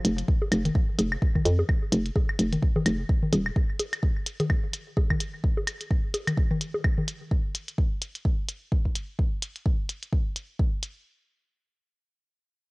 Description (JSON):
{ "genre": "minimal techno", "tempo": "128 BPM", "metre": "4/4", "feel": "swing 57% on 16ths", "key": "unclear", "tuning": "A4 = 443 Hz", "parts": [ { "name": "hollow knocking FM bass", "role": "bass", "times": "0.0-3.5 s", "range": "Eb1 to F2", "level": "-23 LUFS", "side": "equal", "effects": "sidechain pumping" }, { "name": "electronic hi-hat", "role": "drums", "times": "0.0-10.9 s", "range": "none", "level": "-33 LUFS", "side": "equal", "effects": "cassette tape" }, { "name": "electronic kick drum", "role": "drums", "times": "0.3-10.7 s", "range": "none", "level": "-24 LUFS", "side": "equal", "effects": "cassette tape" }, { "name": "bongos, woodblock and congas", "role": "percussion", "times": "0.4-7.1 s", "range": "none", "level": "-30 LUFS", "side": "left 1 dB", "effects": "cassette tape, tape echo" } ], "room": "digital ambience", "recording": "home recording on cassette", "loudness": "-24 LUFS", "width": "side -27 dB against mid", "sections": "0.0-11.1 A section", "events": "none", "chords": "none" }